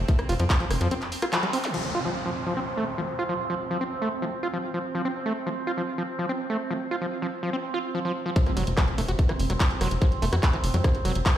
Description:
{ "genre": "psychedelic trance", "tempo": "145 BPM", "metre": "4/4", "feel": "straight", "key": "F major", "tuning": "A4 = 441 Hz", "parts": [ { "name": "overtone-sweeping drone", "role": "sustained chords", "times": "0.0-11.4 s", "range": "C4", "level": "-32 LUFS", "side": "right 4 dB", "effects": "chorus, built-in reverb, phaser, sidechain pumping" }, { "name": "tight sequencer bass", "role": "bass", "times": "0.0-0.9, 8.6-11.2 s", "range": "F1 to F2", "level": "-25 LUFS", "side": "equal", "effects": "none" }, { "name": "overdriven acid bass", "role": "riff", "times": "0.1-11.3 s", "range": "E3 to Gb4", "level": "-29 LUFS", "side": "equal", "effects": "auto-pan, sidechain pumping, digital delay" }, { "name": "electronic kick drum", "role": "drums", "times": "0.1-0.6, 8.4-11.3 s", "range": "none", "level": "-22 LUFS", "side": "equal", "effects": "none" }, { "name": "techno drum kit", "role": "drums", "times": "0.1-1.8, 8.4-11.3 s", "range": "crash cymbal, handclaps, hi-hat, rim click", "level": "-30 LUFS", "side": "equal", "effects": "overdrive" }, { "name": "zap, downlifter and impact", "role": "sound effects", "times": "1.6-5.0, 8.4-10.0 s", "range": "none", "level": "-34 LUFS", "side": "equal", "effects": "none" } ], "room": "moderate plate reverb, RT60 2.0 s", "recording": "played on a big sound system in a bare room, large studio reverb", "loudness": "-24 LUFS", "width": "side -11 dB against mid", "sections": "0.0-1.7 A section; 1.7-8.4 B section; 8.4-11.4 A section", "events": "drop 0.0-1.7, 8.4-11.4; break 0.9-1.7; band accent 1.3; filter sweep on acid bass 1.7-8.4; impact 8.4-10.0", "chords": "0.0 F5" }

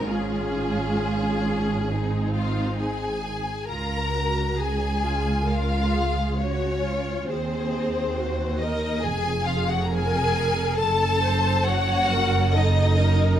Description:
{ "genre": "classical, slow romantic movement for string orchestra", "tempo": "68 BPM", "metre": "4/4", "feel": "rubato", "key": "Db major", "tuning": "A4 = 442 Hz", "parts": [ { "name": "warm studio violin section", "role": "melody", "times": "0.0-13.4 s", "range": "Eb4 to Bb5", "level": "-28 LUFS", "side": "left 4 dB", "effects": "none" }, { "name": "rich studio violin section", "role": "second line", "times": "0.0-13.4 s", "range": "C4 to Bb4", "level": "-30 LUFS", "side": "left 2 dB", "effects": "none" }, { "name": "warm studio viola section", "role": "accompaniment", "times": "0.0-13.4 s", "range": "C4 to Db5", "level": "-30 LUFS", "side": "right 1 dB", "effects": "none" }, { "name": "dark symphonic cello section", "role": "bass", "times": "0.0-13.4 s", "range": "Db2 to Ab2", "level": "-26 LUFS", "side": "right 2 dB", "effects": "none" }, { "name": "warm studio double bass section", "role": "bass", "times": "0.0-13.4 s", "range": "F1 to Eb2", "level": "-28 LUFS", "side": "right 2 dB", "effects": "none" } ], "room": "light reverb", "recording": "none", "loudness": "-21 LUFS", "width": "side -10 dB against mid", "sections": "0.0-3.7 A section; 3.7-13.4 B section", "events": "none", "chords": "0.1 Db/Ab; 1.9 Ab; 3.7 Db; 7.3 Ab/Eb; 9.0 Fmadd11; 10.8 Ebm7b5/Gb" }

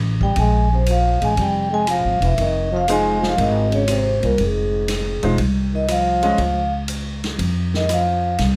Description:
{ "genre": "jazz, small-group swing and bop", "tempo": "120 BPM", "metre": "4/4", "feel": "swing 69% on 8ths", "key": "F minor", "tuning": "A4 = 444 Hz", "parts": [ { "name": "upright bass", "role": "bass", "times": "0.0-8.6 s", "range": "E1 to F2", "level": "-23 LUFS", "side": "equal", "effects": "none" }, { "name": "vibraphone with soft mallets", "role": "melody", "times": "0.2-8.4 s", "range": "Ab4 to Ab5", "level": "-23 LUFS", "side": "equal", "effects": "none" }, { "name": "warm trombone", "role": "second line", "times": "0.2-8.4 s", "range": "Ab2 to Ab3", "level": "-28 LUFS", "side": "equal", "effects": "none" }, { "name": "swinging big-band drum kit", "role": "drums", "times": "0.2-8.6 s", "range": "hi-hat, kick drum, ride cymbal, rim click, snare drum", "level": "-31 LUFS", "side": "equal", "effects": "none" }, { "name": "warm grand piano", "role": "accompaniment", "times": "2.9-6.4 s", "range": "Ab3 to Eb5", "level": "-25 LUFS", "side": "equal", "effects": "none" } ], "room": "light reverb", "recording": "none", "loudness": "-19 LUFS", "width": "mono", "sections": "0.0-8.6 A section", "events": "none", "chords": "0.0 Bb7(no3); 2.4 Fm7; 6.4 Db" }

